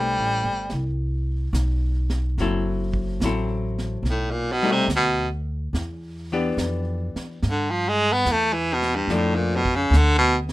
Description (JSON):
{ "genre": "jazz ballad", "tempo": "72 BPM", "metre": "4/4", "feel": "swing 67% on 8ths", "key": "unclear", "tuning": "A4 = 443 Hz", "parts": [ { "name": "edgy baritone saxophone", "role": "melody", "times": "0.0-10.4 s", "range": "G2 to B3", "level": "-21 LUFS", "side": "equal", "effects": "none" }, { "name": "archtop guitar, miked and amplified", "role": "accompaniment", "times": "0.0-9.6 s", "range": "E3 to B4", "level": "-26 LUFS", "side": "left 3 dB", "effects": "none" }, { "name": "upright bass", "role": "bass", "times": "0.0-10.5 s", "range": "F#1 to G2", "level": "-25 LUFS", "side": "equal", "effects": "none" }, { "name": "vintage brush drum kit", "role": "drums", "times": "0.7-10.5 s", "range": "brushed snare drum, hi-hat, kick drum, snare drum", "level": "-31 LUFS", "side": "right 2 dB", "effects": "none" } ], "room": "light reverb", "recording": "minimal, uncompressed stereo recording", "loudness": "-20 LUFS", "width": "side -17 dB against mid", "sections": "0.0-10.5 A section", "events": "baritone saxophone solo 0.0-10.5", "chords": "0.0 Am9; 2.4 F#m7b5; 4.0 B7alt; 5.7 Em7; 9.1 Dm6" }